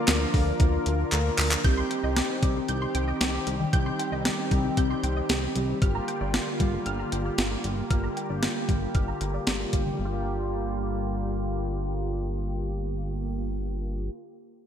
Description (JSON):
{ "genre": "synth-pop", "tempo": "115 BPM", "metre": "4/4", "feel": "straight", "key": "G minor", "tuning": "A4 = 440 Hz", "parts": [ { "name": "direct-recorded clean electric guitar", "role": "melody", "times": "0.0-1.3 s", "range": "D5", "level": "-42 LUFS", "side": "right 2 dB", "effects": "none" }, { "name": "mellow synth brass", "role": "accompaniment", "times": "0.0-14.1 s", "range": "Bb3 to Bb4", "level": "-31 LUFS", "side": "equal", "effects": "chorus, low-pass filter" }, { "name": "chorused pulse-width pad", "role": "sustained chords", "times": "0.0-14.1 s", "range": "D3 to G4", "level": "-34 LUFS", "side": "equal", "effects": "low-pass filter" }, { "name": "chorused synth bass", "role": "bass", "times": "0.1-14.1 s", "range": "G1 to D2", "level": "-30 LUFS", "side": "equal", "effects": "none" }, { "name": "clean 12-bit digital drum machine", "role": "drums", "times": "0.1-9.9 s", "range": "handclaps, hi-hat, kick drum, snare drum", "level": "-26 LUFS", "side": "equal", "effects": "gated reverb" }, { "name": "wide unison pluck", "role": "arpeggios", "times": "1.6-14.2 s", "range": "D3 to G6", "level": "-34 LUFS", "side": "right 1 dB", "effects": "analog chorus, low-pass filter, ping-pong delay" } ], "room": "moderate lush hall reverb, RT60 2.1 s", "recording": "bright 1980s-style digital production", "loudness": "-24 LUFS", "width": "side -9 dB against mid", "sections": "0.0-1.6 A section; 1.6-10.0 B section; 10.0-14.2 C section", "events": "drum fill 1.1-1.6; filter sweep 1.6-10.0", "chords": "0.0 Bb/D; 1.6 Cm; 5.8 Gm7" }